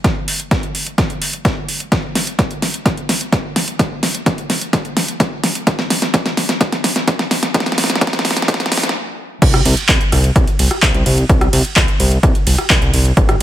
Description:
EDM, festival progressive house; 128 BPM; 4/4; straight; A4 = 439 Hz
electronic kick drum; drums; 0.0-13.3 s; -16 LUFS; equal; overdrive
pop drum kit; drums; 0.0-13.4 s; crash cymbal, handclaps, hi-hat, ride cymbal, rim click, snare drum; -17 LUFS; equal; overdrive
fat analog bass; bass; 9.4-13.4 s; Ab1 to C2; -15 LUFS; equal; sidechain pumping
light reverb; high-pass filter; -13 LUFS; side -12 dB against mid
0.0-9.4 A section; 9.4-13.4 B section
build-up 0.0-9.4; drum fill 0.0-9.0; stop 9.0-9.4; drop 9.4-13.4

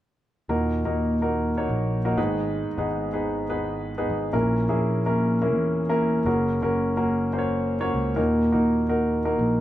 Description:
pop; 125 BPM; 4/4; straight; A4 = 440 Hz
clear grand piano; accompaniment; 0.5-9.6 s; G#2 to C#5; -23 LUFS; equal
picked electric bass; bass; 0.5-9.6 s; F#1 to E2; -26 LUFS; equal
wet studio reverb, RT60 0.5 s; band playing live in one room; -22 LUFS; side -13 dB against mid
0.5-9.6 A section
0.5 D#m; 2.2 G#m; 4.3 A#dim; 6.3 F#; 8.2 D#m

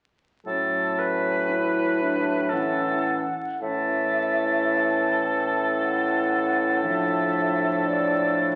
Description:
classical, slow romantic movement for wind quintet; 50-60 BPM; 3/4; rubato; A major; A4 = 440 Hz
warm oboe; second line; 0.5-8.6 s; A4 to B4; -28 LUFS; equal
warm French horn; accompaniment; 0.5-8.6 s; E3 to F#3; -32 LUFS; equal
warm clarinet; accompaniment; 0.5-8.6 s; C#4 to E4; -33 LUFS; equal
warm bassoon; bass; 0.5-8.6 s; A2; -30 LUFS; equal
mellow hollow silver concert flute; melody; 2.0-8.4 s; D5 to A5; -32 LUFS; equal
wet recital hall reverb, RT60 1.6 s; very old 78 rpm record, vinyl crackle, nothing above 10.8 kHz; -24 LUFS; mono
0.5-3.6 A section; 3.6-8.6 B section
0.5 A; 6.8 Dm/A

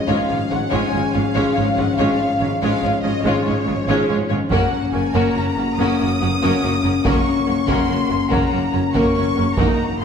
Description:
cinematic, epic orchestral film score; 95 BPM (dotted quarters); 12/8; straight; A4 = 440 Hz
warm symphonic violin section; melody; 0.0-10.0 s; Db5 to Eb6; -24 LUFS; left 2 dB
dark French horn section; sustained chords; 0.0-10.0 s; F3 to Eb4; -22 LUFS; left 5 dB
rich studio violin section; second line; 0.1-10.0 s; F4 to Db5; -25 LUFS; left 2 dB
clear symphonic viola section; accompaniment; 0.1-10.0 s; Ab3 to Eb4; -23 LUFS; right 1 dB
clear symphonic cello section; bass; 0.1-10.0 s; Gb2 to Ab2; -25 LUFS; right 4 dB
rich symphonic double bass section; bass; 0.1-10.0 s; Gb1 to Ab1; -26 LUFS; right 4 dB
solo taiko drums; drums; 4.5-10.0 s; -24 LUFS; right 1 dB
wet recital hall reverb, RT60 1.7 s; heard from further back in the room; -16 LUFS; side -7 dB against mid
0.0-10.0 A section
0.0 Db/Ab; 4.5 Gb

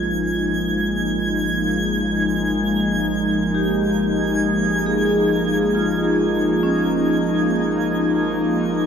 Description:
ambient; 68 BPM; 4/4; straight; A4 = 437 Hz
airy breathy pad; sustained chords; 0.0-8.9 s; F3 to Eb4; -20 LUFS; left 1 dB; chorus
vibraphone with medium hard mallets; arpeggios; 0.0-8.9 s; Db4 to Ab4; -24 LUFS; equal; diffuse ambient delay
warm sub bass; bass; 0.0-8.9 s; Ab1; -36 LUFS; equal
twinkling granular texture; texture; 0.0-8.9 s; Ab6; -26 LUFS; right 3 dB; built-in reverb
wet cathedral reverb, RT60 6.7 s; in a vast, echoing space; -17 LUFS; side -7 dB against mid
0.0-8.9 A section
fade-out on sub bass 0.0-8.9; filter sweep on analog synth pad 0.0-8.9
0.0 Bbm7/Ab

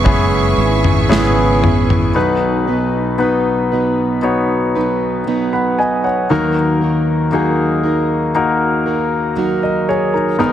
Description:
pop ballad; 58 BPM; 4/4; straight; A4 = 441 Hz
warm concert grand piano; accompaniment; 0.0-10.5 s; G#1 to B5; -15 LUFS; left 3 dB
warm studio string section; sustained chords; 0.0-2.1 s; G#4 to C#6; -22 LUFS; right 4 dB
fingerpicked plugged-in steel-string acoustic guitar; arpeggios; 0.0-10.5 s; G#2 to B4; -19 LUFS; right 5 dB; tape echo
sustaining fretless electric bass; bass; 0.0-2.1 s; F#1 to G#1; -17 LUFS; equal; wide subtle chorus
modern studio drum kit; drums; 0.1-2.1 s; kick drum, snare drum, toms; -17 LUFS; left 1 dB
moderate concert hall reverb, RT60 2.1 s; dense, heavily limited modern master, faint mains hum; -13 LUFS; side -10 dB against mid
0.0-2.2 A section; 2.2-10.5 B section
0.0 C#m7; 2.2 B; 6.3 D#m

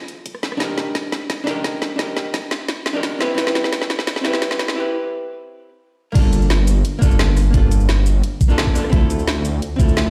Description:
liquid drum and bass; 173 BPM; 4/4; straight; G minor; A4 = 440 Hz
archtop guitar, miked and amplified; accompaniment; 0.0-10.1 s; Bb3 to B4; -26 LUFS; equal; delay
drum and bass drum kit; drums; 0.1-10.1 s; crash cymbal, hi-hat, rim click, shaker, snare drum; -26 LUFS; equal; overdrive
electronic kick drum; drums; 0.3-9.9 s; -18 LUFS; equal; overdrive, high-pass filter on kick
swelling detuned saw bass; bass; 6.2-10.1 s; G1 to D2; -19 LUFS; equal
light reverb; played on a big sound system in a bare room, stone room reverb, high-pass filter; -19 LUFS; mono
0.0-6.2 A section; 6.2-10.1 B section
build-up 0.0-6.2; drum fill 0.0-4.8; break 4.8-6.2; drop 6.2-10.1
0.0 Fmaj7/C; 0.6 Ebmaj7/D; 3.2 Cmaj7; 6.2 Gm9; 8.9 Dm9

